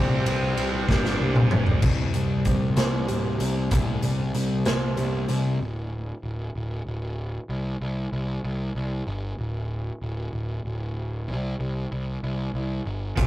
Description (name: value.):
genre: quiet-loud alternative rock.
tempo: 63 BPM (dotted quarters).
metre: 6/8.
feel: straight.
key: unclear.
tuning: A4 = 440 Hz.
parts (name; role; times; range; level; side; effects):
bright cello; melody; 0.0-1.6 s; C4 to D4; -32 LUFS; left 1 dB; none.
string machine, violas; sustained chords; 0.0-1.8 s; G4 to D6; -39 LUFS; left 1 dB; none.
scooped high-gain guitar; riff; 0.0-1.8, 13.2-13.3 s; D2 to C5; -31 LUFS; right 4 dB; distortion.
thick fuzz guitar; riff; 0.0-5.6 s; C3 to C5; -30 LUFS; left 4 dB; distortion.
fuzz picked electric bass; bass; 0.0-13.3 s; D1 to C2; -27 LUFS; equal; overdrive.
raw garage drum kit; drums; 0.3-5.4, 13.2-13.3 s; crash cymbal, hi-hat, kick drum, ride cymbal, snare drum, toms; -24 LUFS; equal; none.
electric guitar through a small old amp; arpeggios; 1.8-5.6, 13.2-13.3 s; A2 to C5; -32 LUFS; right 2 dB; none.
room: light reverb.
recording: rough rehearsal-room recording, tube saturation.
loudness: -24 LUFS.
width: side -14 dB against mid.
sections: 0.0-1.8 A section; 1.8-5.6 B section; 5.6-13.3 C section.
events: drum fill 0.9-1.8.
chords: 0.0 Csus2; 1.8 C5; 5.6 N.C.; 7.5 C5; 9.4 N.C.; 11.3 C5.